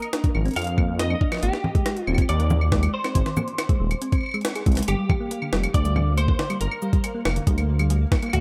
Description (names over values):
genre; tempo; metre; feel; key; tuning
IDM; 139 BPM; 4/4; straight; G phrygian; A4 = 441 Hz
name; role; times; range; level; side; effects
clean electric guitar; melody; 0.0-8.4 s; F#4 to F5; -33 LUFS; equal; ensemble chorus, tape echo
jungle sampler-style drum kit; drums; 0.0-8.4 s; cabasa, claves, congas, hi-hat, snare drum; -31 LUFS; equal; none
thumb-piano-like synth pluck; arpeggios; 0.1-8.4 s; A2 to Ab4; -32 LUFS; equal; chorus, analog delay
electronic kick drum; drums; 0.2-8.2 s; none; -24 LUFS; equal; none
dark detuned saw bass; bass; 0.3-8.4 s; Eb1 to F2; -25 LUFS; equal; none
pulsing gated texture; texture; 4.9-8.4 s; Bb3 to F5; -42 LUFS; equal; chorus, built-in reverb, sidechain pumping
room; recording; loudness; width
light reverb, digital ambience; echo-heavy mix; -23 LUFS; mono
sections
0.0-4.9 A section; 4.9-8.4 A section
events
band accent 4.4; drum fill 4.7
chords
0.0 Bbsus4; 1.4 Abmaj7; 4.9 Gm7